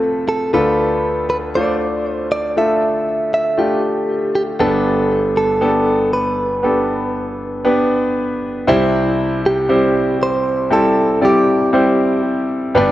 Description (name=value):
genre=pop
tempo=59 BPM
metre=4/4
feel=straight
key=C major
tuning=A4 = 440 Hz
part: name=direct-recorded clean electric guitar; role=melody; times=0.0-12.9 s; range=D4 to E5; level=-18 LUFS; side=right 1 dB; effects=spring reverb
part: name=bright concert grand piano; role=accompaniment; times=0.0-12.9 s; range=F1 to D5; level=-16 LUFS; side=left 1 dB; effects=none
room=light reverb, studio reverb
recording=worn, warbling old tape, cassette tape, warbly pitch drift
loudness=-14 LUFS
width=side -14 dB against mid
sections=0.0-8.7 A section; 8.7-12.9 B section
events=none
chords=0.0 F; 0.5 Dm; 4.6 Gadd9; 8.7 C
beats=| 0.54 1.56 2.57 3.59 | 4.61 5.62 6.64 7.66 | 8.68 9.69 10.71 11.73 | 12.74